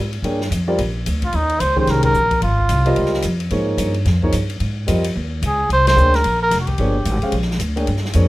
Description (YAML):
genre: modal jazz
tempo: 220 BPM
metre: 4/4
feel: swing 61% on 8ths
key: C phrygian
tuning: A4 = 440 Hz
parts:
  - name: upright bass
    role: bass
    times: 0.0-8.3 s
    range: F1 to Ab2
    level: -19 LUFS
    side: equal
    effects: none
  - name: open jazz drum kit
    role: drums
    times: 0.1-8.2 s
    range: hi-hat, kick drum, ride cymbal, snare drum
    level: -27 LUFS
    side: left 2 dB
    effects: none
  - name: warm grand piano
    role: accompaniment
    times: 0.2-8.3 s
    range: Eb3 to G5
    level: -21 LUFS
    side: equal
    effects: none
  - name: trumpet with cup mute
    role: melody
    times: 1.2-3.2, 5.5-7.5 s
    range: Eb4 to C5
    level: -18 LUFS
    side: equal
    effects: none
room: light reverb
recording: none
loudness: -16 LUFS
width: side -17 dB against mid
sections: 0.0-8.3 A section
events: band accent 2.0, 5.8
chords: 0.0 C9sus4 (rootless); 1.3 Eb9sus4; 5.7 C9sus4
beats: | 0.24 0.51 0.79 1.06 | 1.33 1.60 1.88 2.15 | 2.42 2.70 2.97 3.24 | 3.51 3.79 4.06 4.33 | 4.61 4.88 5.15 5.42 | 5.70 5.97 6.24 6.51 | 6.79 7.06 7.33 7.60 | 7.88 8.15